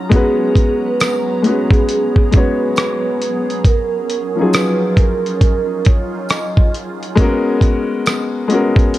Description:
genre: lo-fi hip hop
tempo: 68 BPM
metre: 4/4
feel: swing 65% on 16ths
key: G# minor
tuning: A4 = 440 Hz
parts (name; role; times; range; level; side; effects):
- warm upright piano; accompaniment; 0.0-9.0 s; E#3 to C#5; -17 LUFS; left 2 dB; cassette tape, low-pass filter
- granular cloud pad; sustained chords; 0.0-7.2 s; F#3 to A#5; -26 LUFS; right 2 dB; built-in reverb, low-pass filter
- vibraphone with soft mallets; melody; 0.1-6.7 s; G#4 to D#5; -20 LUFS; right 4 dB; low-pass filter, tape echo
- dusty soul sampler-style drum kit; drums; 0.1-9.0 s; hi-hat, kick drum, rim click; -13 LUFS; equal; vintage 12-bit sampler grit
- tambourine; percussion; 1.0-8.3 s; none; -36 LUFS; right 8 dB; none
room: light reverb, small room ambience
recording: cassette tape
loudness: -13 LUFS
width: side -15 dB against mid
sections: 0.0-9.0 A section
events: none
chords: 0.1 G#m11; 3.6 D#m11; 7.2 G#m11

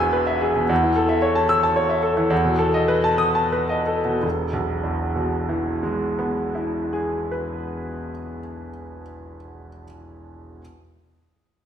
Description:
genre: classical, virtuoso piano study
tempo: 55-76 BPM (dotted quarters)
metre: 6/8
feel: rubato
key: E major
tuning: A4 = 439 Hz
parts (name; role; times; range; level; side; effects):
- clear baby grand piano; solo; 0.0-10.6 s; E1 to E6; -20 LUFS; equal; none
room: wet recital hall reverb, RT60 1.4 s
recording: recorded in a church or concert hall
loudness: -19 LUFS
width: side -9 dB against mid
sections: 0.7-4.2 A section; 4.2-8.4 B section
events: slowing down 0.0-4.2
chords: 0.0 E; 0.7 A/E; 2.3 B7/E; 4.2 E

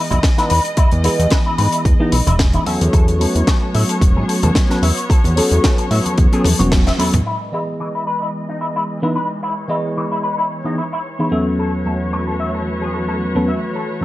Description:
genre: nu-disco, nu disco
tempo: 111 BPM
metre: 4/4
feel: swing 55% on 16ths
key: E major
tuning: A4 = 435 Hz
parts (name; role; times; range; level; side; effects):
- tine electric piano; accompaniment; 0.0-14.0 s; E2 to D#5; -20 LUFS; equal; overdrive, phaser, sidechain pumping, slapback echo
- muted studio string section; sustained chords; 0.0-14.0 s; E3 to D#5; -26 LUFS; equal; sidechain pumping, low-pass filter
- electric guitar with an envelope filter; riff; 0.1-14.0 s; E3 to E5; -23 LUFS; left 2 dB; ensemble chorus, low-pass filter
- fat analog bass; bass; 0.1-7.2 s; E1 to A2; -17 LUFS; equal; none
- tight funk drum kit; drums; 0.1-7.2 s; hi-hat, snare drum, toms; -22 LUFS; left 1 dB; low-pass filter on hats, low-pass filter on toms, low-pass filter on snare, low-pass filter on room
- congas; percussion; 0.1-6.7 s; none; -23 LUFS; right 1 dB; none
- electronic kick drum; drums; 0.2-6.8 s; none; -14 LUFS; equal; none
room: light reverb, small room ambience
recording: none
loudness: -14 LUFS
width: side -16 dB against mid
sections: 0.0-7.3 A section; 7.3-14.0 B section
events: drum fill 6.5-7.3; band accent 6.7; filter sweep on string section 7.3-14.0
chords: 0.0 Emaj7; 2.7 A69/E; 7.3 Emaj7; 11.3 A69/E

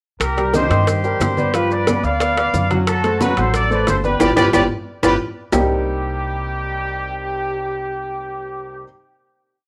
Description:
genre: latin, salsa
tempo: 180 BPM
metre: 4/4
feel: straight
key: unclear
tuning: A4 = 438 Hz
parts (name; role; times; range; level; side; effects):
- clear trumpet section; melody; 0.2-8.8 s; F#4 to F5; -24 LUFS; equal; cassette tape
- upright bass; bass; 0.2-8.8 s; G1 to G2; -26 LUFS; equal; none
- bongos; percussion; 0.2-5.6 s; none; -27 LUFS; equal; none
- claves; percussion; 0.2-5.6 s; none; -34 LUFS; equal; none
- congas; percussion; 0.2-5.6 s; none; -28 LUFS; equal; none
- maracas; percussion; 0.2-5.6 s; none; -37 LUFS; equal; none
- timbales; percussion; 0.2-5.6 s; none; -25 LUFS; equal; none
- warm grand piano; accompaniment; 0.4-8.8 s; C3 to F#5; -24 LUFS; equal; cassette tape
room: wet studio reverb, RT60 0.5 s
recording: home recording on cassette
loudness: -19 LUFS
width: mono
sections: 0.2-5.5 verse; 5.5-8.2 final chord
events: drum fill 4.2-5.5; band accent 4.2-5.5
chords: 0.2 Cm7; 1.5 G7; 2.9 D7; 4.2 G7; 5.5 Cm7

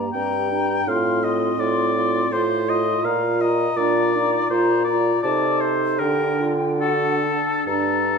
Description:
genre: classical, slow romantic movement for wind quintet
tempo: 66-85 BPM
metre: 3/4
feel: rubato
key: G minor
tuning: A4 = 440 Hz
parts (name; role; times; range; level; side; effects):
- concert flute; melody; 0.0-8.2 s; F#5 to C6; -27 LUFS; left 10 dB; none
- dark clarinet; accompaniment; 0.0-8.2 s; Bb3 to A4; -27 LUFS; right 5 dB; none
- warm French horn; accompaniment; 0.0-8.2 s; D4 to G4; -27 LUFS; equal; none
- mellow bassoon; bass; 0.0-8.2 s; G2 to D3; -23 LUFS; right 3 dB; none
- warm oboe; second line; 0.1-8.2 s; A4 to G5; -24 LUFS; left 3 dB; none
room: wet recital hall reverb, RT60 1.5 s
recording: recorded in a church or concert hall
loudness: -18 LUFS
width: side -5 dB against mid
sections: 0.0-8.2 A section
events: none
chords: 0.0 Gm; 0.9 F/A; 3.1 Bb; 5.2 Adim/C; 6.0 Gm/D; 6.8 D; 7.7 Gm

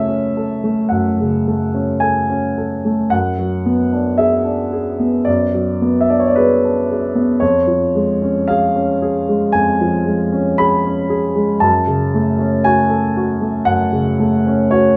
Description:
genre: classical, romantic nocturne for solo piano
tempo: 54-60 BPM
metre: 4/4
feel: rubato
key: F# minor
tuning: A4 = 439 Hz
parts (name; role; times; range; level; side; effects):
- warm concert grand piano; solo; 0.0-15.0 s; E#2 to B5; -16 LUFS; equal; none
room: moderate large studio reverb, RT60 0.9 s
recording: none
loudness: -16 LUFS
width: mono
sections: 0.0-15.0 A section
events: none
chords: 0.0 F#m; 3.1 G#m7b5/F#; 7.4 C#/E#; 11.6 F#m

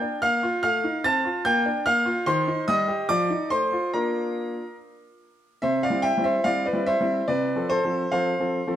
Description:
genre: classical-period piano sonatina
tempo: 72 BPM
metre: 2/4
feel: straight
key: Bb major, C major from 5.6 s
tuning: A4 = 444 Hz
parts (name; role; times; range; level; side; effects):
- clear baby grand piano; solo; 0.0-8.8 s; C3 to A6; -22 LUFS; equal; none
room: moderate recital hall reverb, RT60 1.7 s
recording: close, detailed microphones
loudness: -21 LUFS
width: side -11 dB against mid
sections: 0.0-5.6 A section; 5.6-8.8 B section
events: none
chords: 0.0 Bb; 0.6 F7/A; 1.5 Bb; 2.3 Cm/Eb; 3.1 F7; 3.9 Bb; 5.6 C; 7.3 F/C

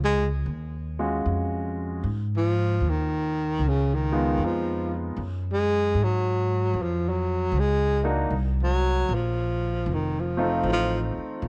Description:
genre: jazz ballad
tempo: 77 BPM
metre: 4/4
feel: swing 67% on 8ths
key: unclear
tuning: A4 = 438 Hz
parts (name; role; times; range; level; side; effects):
- breathy baritone saxophone; melody; 0.0-11.0 s; Db3 to Ab3; -28 LUFS; equal; none
- upright bass; bass; 0.0-11.5 s; F1 to Ab2; -29 LUFS; equal; none
- warm grand piano; accompaniment; 1.0-11.4 s; Ab3 to Gb4; -30 LUFS; equal; none
room: light reverb, small room ambience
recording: none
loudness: -25 LUFS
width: mono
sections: 0.0-11.5 A section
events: baritone saxophone solo 0.0-11.5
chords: 0.0 Ebm11; 2.0 Ab5; 3.6 Db9; 5.2 Gbmaj7sus2; 8.3 Gbmaj7#11; 9.9 F7

